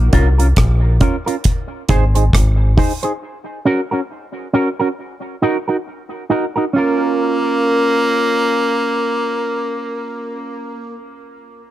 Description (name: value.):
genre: dub reggae.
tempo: 68 BPM.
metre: 4/4.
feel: swing 58% on 16ths.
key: Bb minor.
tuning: A4 = 440 Hz.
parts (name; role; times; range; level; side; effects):
deep dub fingered electric bass; bass; 0.0-2.8 s; Ab1 to C2; -13 LUFS; equal; none.
electric guitar with an envelope filter; accompaniment; 0.1-11.0 s; Db4 to C5; -19 LUFS; right 2 dB; wide subtle chorus, dub echo.
deep reggae drum kit; drums; 0.1-3.2 s; hi-hat, kick drum, rim click; -15 LUFS; equal; none.
edgy tenor saxophone; melody; 6.8-10.9 s; Bb3; -18 LUFS; equal; dub echo.
room: studio ambience.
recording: none.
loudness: -14 LUFS.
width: side -13 dB against mid.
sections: 0.0-6.7 A section; 6.7-10.3 B section.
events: break 0.0-6.7.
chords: 0.0 Bbm; 1.5 Ab; 3.2 Gb; 5.0 Ebm; 6.7 Bbm.